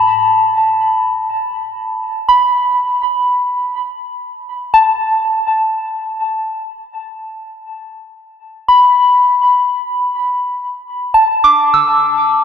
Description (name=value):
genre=ambient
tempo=free time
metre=none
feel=none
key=unclear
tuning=A4 = 441 Hz
part: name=soft synth bell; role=solo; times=0.0-12.4 s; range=A5 to E6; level=-12 LUFS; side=left 1 dB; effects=chorus, phaser, diffuse ambient delay
room=wet lush hall reverb, RT60 3.3 s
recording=dark, warm production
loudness=-11 LUFS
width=side -8 dB against mid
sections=0.0-12.4 A section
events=none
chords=0.0 Asus2